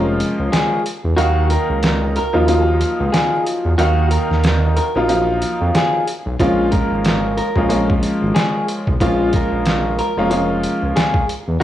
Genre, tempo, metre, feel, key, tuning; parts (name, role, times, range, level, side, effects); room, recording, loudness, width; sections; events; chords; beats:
hip hop, boom-bap hip-hop; 92 BPM; 4/4; swing 58% on 16ths; Bb minor; A4 = 440 Hz
mellow electric guitar; melody; 0.0-11.6 s; F4 to Bb4; -22 LUFS; equal; high-pass filter, low-pass filter, tape echo
bright upright piano; accompaniment; 0.0-11.6 s; Eb3 to F5; -19 LUFS; left 1 dB; cassette tape, high-pass filter, low-pass filter
smooth synth bass; bass; 0.0-11.6 s; F1 to F2; -19 LUFS; right 1 dB; tube saturation
trip hop sampler-style drum kit; drums; 0.2-11.5 s; hi-hat, kick drum, snare drum; -20 LUFS; equal
little or no reverb; dry, gritty hardware recording, vinyl crackle, studio ambience; -15 LUFS; side -12 dB against mid
0.0-11.6 A section
break 0.0-6.4
0.0 Bbm7; 1.2 Ebmadd9; 6.4 Bbm7
0.53 | 1.18 1.83 2.48 3.13 | 3.79 4.44 5.09 5.74 | 6.39 7.05 7.70 8.35 | 9.00 9.66 10.31 10.96 | 11.61